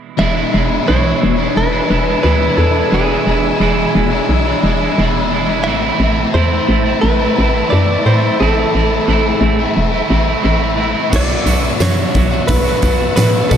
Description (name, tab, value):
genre	rock, shoegaze and dream pop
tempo	88 BPM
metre	4/4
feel	straight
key	unclear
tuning	A4 = 440 Hz
part	direct-recorded clean electric guitar	melody	0.2-13.6 s	G#4 to E5	-20 LUFS	right 1 dB	spring reverb, tape echo
part	soft string machine	sustained chords	0.6-13.6 s	D4 to E6	-24 LUFS	equal	phaser, ensemble chorus
part	biting overdriven guitar	riff	0.2-13.6 s	E2 to F#4	-19 LUFS	left 6 dB	ensemble chorus
part	biting overdriven guitar	riff	0.2-13.6 s	E2 to F#4	-18 LUFS	right 7 dB	reverse reverb
part	hollow knocking FM bass	bass	0.2-13.6 s	E1 to B2	-16 LUFS	equal	none
part	huge arena drum kit	drums	11.1-13.6 s	crash cymbal, hi-hat, kick drum, snare drum	-17 LUFS	equal	none
part	tambourine	percussion	11.1-13.6 s	none	-33 LUFS	right 9 dB	none
room	wet cathedral reverb, RT60 5.3 s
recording	dreamy mix soaked in reverb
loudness	-12 LUFS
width	side -8 dB against mid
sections	0.2-13.6 A section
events	none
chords	0.2 E7; 5.7 Am; 11.1 Bm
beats	| 0.19 0.88 1.56 2.24 | 2.92 3.61 4.29 4.97 | 5.66 6.34 7.03 7.71 | 8.39 9.08 9.76 10.44 | 11.12 11.81 12.49 13.17